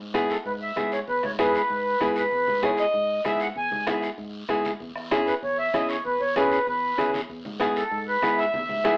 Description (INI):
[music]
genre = latin, cumbia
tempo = 193 BPM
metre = 4/4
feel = straight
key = E major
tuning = A4 = 441 Hz
[part]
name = fingered electric bass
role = bass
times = 0.0-9.0 s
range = E2 to G#2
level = -37 LUFS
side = equal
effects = none
[part]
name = nylon-string guitar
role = accompaniment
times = 0.1-9.0 s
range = B3 to G#4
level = -25 LUFS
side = equal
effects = none
[part]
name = bombo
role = percussion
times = 0.1-9.0 s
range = none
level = -36 LUFS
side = equal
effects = none
[part]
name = congas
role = percussion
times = 0.1-8.9 s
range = none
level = -37 LUFS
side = equal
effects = none
[part]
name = guiro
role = percussion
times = 0.1-9.0 s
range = none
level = -38 LUFS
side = left 1 dB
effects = none
[part]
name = accordion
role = second line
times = 0.3-9.0 s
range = A4 to G#5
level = -24 LUFS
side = equal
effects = none
[sound]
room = moderate studio reverb, RT60 0.7 s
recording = band playing live in one room, telephone sound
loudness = -22 LUFS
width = side -28 dB against mid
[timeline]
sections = 0.0-9.0 A section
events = accordion solo 0.0-9.0; drum fill 8.5-9.0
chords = 0.0 E; 4.8 C#m/E; 7.3 E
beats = 0.14 0.45 0.77 | 1.07 1.39 1.70 2.01 | 2.32 2.63 2.94 3.25 | 3.56 3.87 4.18 4.49 | 4.80 5.12 5.43 5.74 | 6.05 6.36 6.67 6.98 | 7.29 7.60 7.91 8.22 | 8.54 8.85